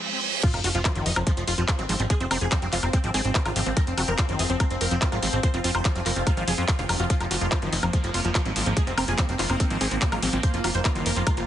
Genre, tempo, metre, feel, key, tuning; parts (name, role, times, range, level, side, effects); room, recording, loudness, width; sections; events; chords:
psychedelic trance; 144 BPM; 4/4; straight; F phrygian; A4 = 440 Hz
bubbling stepped-filter texture; sustained chords; 0.0-11.5 s; F3 to C4; -32 LUFS; equal; chorus, built-in reverb, sidechain pumping
reverse cymbal, sub drop and zap; sound effects; 0.0-2.1, 6.8-6.9 s; -30 LUFS; right 3 dB
dense compressed supersaw; melody; 0.4-11.4 s; F3 to C5; -30 LUFS; right 1 dB; phaser, cassette tape, sidechain pumping, dub echo
overdriven acid bass; riff; 0.4-11.3 s; Eb3 to Gb4; -33 LUFS; moving between left 4 dB and right 4 dB; auto-pan, sidechain pumping, dub echo
electronic kick drum; drums; 0.4-11.3 s; -23 LUFS; equal
techno drum kit; drums; 0.4-11.5 s; crash cymbal, handclaps, hi-hat, woodblock; -28 LUFS; left 1 dB
plucky analog bass; bass; 0.5-11.4 s; F1 to F2; -27 LUFS; equal; tube saturation
metallic wobble bass; second line; 1.9-3.1, 8.6-10.0 s; Bb3 to F4; -42 LUFS; left 3 dB
little or no reverb; heavily compressed radio sound, multiband compression, nothing above 10.7 kHz; -22 LUFS; side -11 dB against mid
0.4-11.5 A section
reverse cymbal 0.0-0.4; stop 0.0-0.4; drop 0.4-11.5; impact 0.4-2.1
0.4 F5